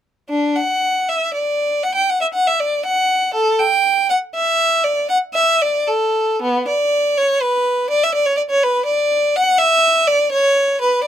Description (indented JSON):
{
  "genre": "classical, baroque-style suite movement for unaccompanied violin",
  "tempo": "80 BPM (dotted quarters)",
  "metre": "12/8",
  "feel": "rubato",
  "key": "D major",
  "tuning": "A4 = 440 Hz",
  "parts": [
    { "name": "rich violin", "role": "solo", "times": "0.3-11.1 s", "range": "B3 to G5", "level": "-14 LUFS", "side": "equal", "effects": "none" }
  ],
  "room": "light reverb",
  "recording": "close, detailed microphones",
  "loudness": "-14 LUFS",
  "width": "side -10 dB against mid",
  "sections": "0.3-11.1 A section",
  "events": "none",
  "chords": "none"
}